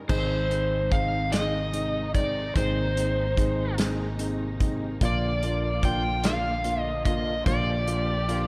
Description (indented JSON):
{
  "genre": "six-eight pop ballad",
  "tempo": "49 BPM (dotted quarters)",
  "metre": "6/8",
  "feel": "straight",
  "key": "unclear",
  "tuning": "A4 = 440 Hz",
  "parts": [
    { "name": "dark studio string section", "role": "sustained chords", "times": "0.0-8.5 s", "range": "C3 to G4", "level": "-39 LUFS", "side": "equal", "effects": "none" },
    { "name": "overdriven slide guitar", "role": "melody", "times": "0.1-8.5 s", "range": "C5 to G5", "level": "-31 LUFS", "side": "equal", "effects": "none" },
    { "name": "warm concert grand piano", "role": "accompaniment", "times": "0.1-8.5 s", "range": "Ab3 to F4", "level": "-34 LUFS", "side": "equal", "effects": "slapback echo" },
    { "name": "fretless electric bass", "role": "bass", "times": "0.1-8.5 s", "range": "Ab1 to Bb1", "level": "-32 LUFS", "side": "equal", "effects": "analog chorus" },
    { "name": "natural country drum kit", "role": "drums", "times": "0.1-8.5 s", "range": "crash cymbal, hi-hat, kick drum, snare drum", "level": "-31 LUFS", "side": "equal", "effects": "none" }
  ],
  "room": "moderate concert hall reverb, RT60 2.1 s",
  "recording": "big arena sound",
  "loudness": "-26 LUFS",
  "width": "mono",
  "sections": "0.1-8.5 A section",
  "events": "none",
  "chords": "0.1 Ab; 5.0 Bb"
}